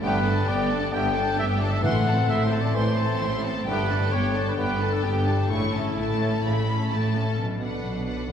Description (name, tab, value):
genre	cinematic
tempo	131 BPM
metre	4/4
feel	straight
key	unclear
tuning	A4 = 440 Hz
part	rich symphonic violin section	melody	0.0-8.3 s	F#5 to C#6	-32 LUFS	left 4 dB	none
part	clear studio violin section	second line	0.0-8.3 s	E4 to B4	-34 LUFS	left 3 dB	none
part	clear symphonic viola section	accompaniment	0.0-8.3 s	A3 to D4	-32 LUFS	right 1 dB	none
part	clear trombone section	sustained chords	0.0-8.3 s	C#3 to A3	-35 LUFS	right 1 dB	none
part	concert harp	arpeggios	0.0-8.3 s	G2 to A5	-32 LUFS	left 6 dB	none
part	mellow trumpet	stabs	0.0-6.9 s	E4 to G5	-28 LUFS	equal	none
part	clear symphonic double bass section	bass	0.0-8.3 s	G1 to B1	-29 LUFS	right 1 dB	none
part	rich symphonic cello section	bass	0.0-8.3 s	G2 to B2	-28 LUFS	right 1 dB	none
part	timpani	percussion	1.8-2.5 s	A2	-30 LUFS	left 1 dB	none
room	wet scoring stage reverb, RT60 1.6 s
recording	heard from further back in the room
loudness	-22 LUFS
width	side -8 dB against mid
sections	0.0-7.4 A section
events	none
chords	0.0 Gadd9; 1.8 Am; 3.7 Gadd9; 5.5 A; 7.4 Bm